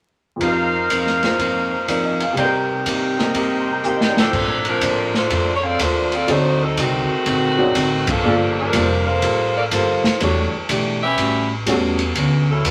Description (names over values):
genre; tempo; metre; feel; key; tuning
jazz, big band swing; 123 BPM; 4/4; swing 66% on 8ths; Bb major; A4 = 438 Hz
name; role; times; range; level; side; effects
archtop guitar, miked and amplified; accompaniment; 0.4-12.7 s; A2 to C5; -27 LUFS; equal; none
warm baby grand piano; accompaniment; 0.4-12.2 s; F2 to C6; -25 LUFS; equal; none
brilliant trumpet section; stabs; 0.4-4.4 s; Eb4 to D6; -23 LUFS; equal; none
swinging big-band drum kit; drums; 0.4-12.7 s; crash cymbal, hi-hat, kick drum, ride cymbal, snare drum; -25 LUFS; equal; none
warm saxophone section; melody; 4.2-12.7 s; Eb3 to E5; -22 LUFS; equal; none
upright bass; bass; 4.3-12.7 s; E1 to Bb2; -26 LUFS; equal; none
room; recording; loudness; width
wet studio reverb, RT60 0.5 s; vinyl crackle; -19 LUFS; mono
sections
0.4-4.3 A section; 4.3-12.7 B section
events
drum fill 3.8-4.3; band accent 8.0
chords
0.4 F7sus4; 2.4 Cm7; 4.3 Bbmaj9; 6.3 D7b9; 8.2 Gm9; 10.2 Em11; 11.2 A13; 12.2 Dmaj13